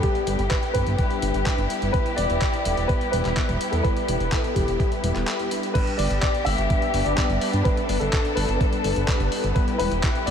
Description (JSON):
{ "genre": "italo disco", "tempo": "126 BPM", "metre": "4/4", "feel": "straight", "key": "G major", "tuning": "A4 = 441 Hz", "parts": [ { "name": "dark grand piano", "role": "melody", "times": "0.0-10.3 s", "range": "G4 to E5", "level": "-27 LUFS", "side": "equal", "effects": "analog chorus, ping-pong delay" }, { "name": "muted studio string section", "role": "sustained chords", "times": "0.0-10.3 s", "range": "B3 to A4", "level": "-29 LUFS", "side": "left 3 dB", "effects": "none" }, { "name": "mellow synth brass", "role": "stabs", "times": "0.0-10.3 s", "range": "G3 to B4", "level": "-30 LUFS", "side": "left 2 dB", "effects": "chorus, vintage 12-bit sampler grit, ping-pong delay" }, { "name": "dusty soul sampler-style drum kit", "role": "drums", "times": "0.0-10.3 s", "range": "crash cymbal, handclaps, hi-hat", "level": "-31 LUFS", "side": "equal", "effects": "studio reverb" }, { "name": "electronic kick drum", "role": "drums", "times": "0.0-10.1 s", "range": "none", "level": "-24 LUFS", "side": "equal", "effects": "studio reverb" }, { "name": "chorused synth bass", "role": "bass", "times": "0.3-10.3 s", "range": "E1 to G2", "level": "-25 LUFS", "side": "equal", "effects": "tube saturation" } ], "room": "moderate huge ambient reverb, RT60 9.0 s", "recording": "dreamy mix soaked in reverb", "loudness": "-20 LUFS", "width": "side -8 dB against mid", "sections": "0.0-5.7 A section; 5.7-10.3 B section", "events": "kick drops out 5.3-5.7", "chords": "0.0 G; 1.9 Em; 5.7 G; 9.6 Em" }